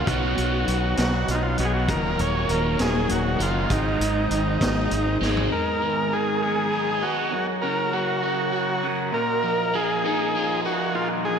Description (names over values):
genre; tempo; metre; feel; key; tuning
psychedelic rock; 66 BPM (dotted quarters); 6/8; straight; unclear; A4 = 440 Hz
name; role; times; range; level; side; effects
combo organ; melody; 0.0-11.4 s; D#4 to Db5; -25 LUFS; equal; analog delay
mellow tonewheel organ; sustained chords; 0.0-11.4 s; Gb3 to Bb5; -31 LUFS; right 3 dB; wide subtle chorus
crunchy overdriven guitar; riff; 0.0-11.4 s; Eb2 to Gb4; -27 LUFS; equal; phaser
fuzz fingered electric bass; bass; 0.0-5.5 s; Eb1 to B1; -26 LUFS; equal; overdrive
vintage drum kit; drums; 0.1-5.5 s; hi-hat, kick drum, snare drum, toms; -28 LUFS; equal; none
room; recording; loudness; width
wet lush hall reverb, RT60 3.0 s; dreamy mix soaked in reverb; -21 LUFS; side -7 dB against mid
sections
0.0-5.5 A section; 5.5-11.4 B section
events
drum fill 5.2-5.5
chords
0.1 Badd9; 1.9 Ebm7; 3.7 Ab7; 5.5 Abm; 7.3 Gb; 9.1 Bbsus4